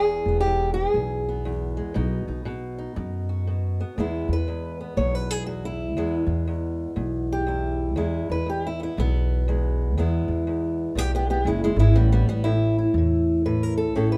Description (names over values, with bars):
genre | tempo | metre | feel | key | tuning
acoustic country blues, solo or duo | 120 BPM | 4/4 | swing 63% on 8ths | E major | A4 = 440 Hz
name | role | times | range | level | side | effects
fingerpicked old ladder-braced acoustic guitar | melody | 0.0-14.2 s | E2 to C#5 | -27 LUFS | equal | none
upright bass | bass | 0.0-14.2 s | E1 to F#2 | -27 LUFS | equal | none
room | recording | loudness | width
light reverb | band playing live in one room | -24 LUFS | mono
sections
0.0-4.0 A section; 4.0-14.2 B section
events
steel-string acoustic guitar solo 4.0-14.2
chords
0.0 E; 2.0 B; 4.0 E; 12.0 A5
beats
0.45 0.95 1.45 | 1.95 2.45 2.96 3.46 | 3.96 4.46 4.96 5.47 | 5.97 6.47 6.97 7.47 | 7.97 8.47 8.97 9.47 | 9.96 10.46 10.96 11.46 | 11.96 12.45 12.95 13.45 | 13.94